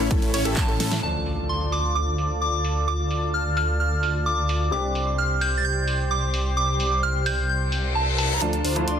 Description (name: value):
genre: EDM, festival progressive house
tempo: 130 BPM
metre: 4/4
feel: straight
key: D minor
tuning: A4 = 443 Hz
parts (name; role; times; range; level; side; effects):
- felt-muted upright piano; accompaniment; 0.0-8.9 s; E3 to G4; -33 LUFS; left 5 dB; sidechain pumping, digital delay
- lush unison pad; sustained chords; 0.0-9.0 s; C#3 to C6; -32 LUFS; equal; chorus, sidechain pumping
- wide unison pluck; arpeggios; 0.0-1.0 s; A4 to C#5; -32 LUFS; right 1 dB; cassette tape, sidechain pumping, digital delay
- supersaw chords; riff; 0.0-1.0, 8.4-9.0 s; C#4 to D5; -28 LUFS; equal; sidechain pumping, low-pass filter, digital delay
- detuned saw bass; bass; 0.0-9.0 s; A1 to A2; -25 LUFS; equal; sidechain pumping
- big-room dance drum kit; drums; 0.1-9.0 s; handclaps, hi-hat, ride cymbal, snare drum; -32 LUFS; equal; low-pass filter on hats, low-pass filter on cymbals, low-pass filter on snare
- electronic kick drum; drums; 0.1-0.7 s; none; -23 LUFS; equal; none
- soft synth bell; melody; 0.6-9.0 s; A5 to A6; -26 LUFS; right 1 dB; chorus, phaser, digital delay
- impact, reverse cymbal and riser; sound effects; 1.0-2.9, 7.7-9.0 s; none; -31 LUFS; left 3 dB; none
room: light reverb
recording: dense, heavily limited modern master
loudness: -21 LUFS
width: side -8 dB against mid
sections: 0.0-1.0 A section; 1.0-8.4 B section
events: drop 0.0-1.0; drum fill 0.8; impact 1.0-2.9; reverse cymbal 7.7-8.4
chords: 0.0 A; 1.0 Dm; 4.7 Csus2; 8.4 Dm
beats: 0.11 0.57 | 1.03 1.49 1.95 2.42 | 2.88 3.34 3.80 4.26 | 4.72 5.18 5.65 6.11 | 6.57 7.03 7.49 7.95 | 8.41 8.88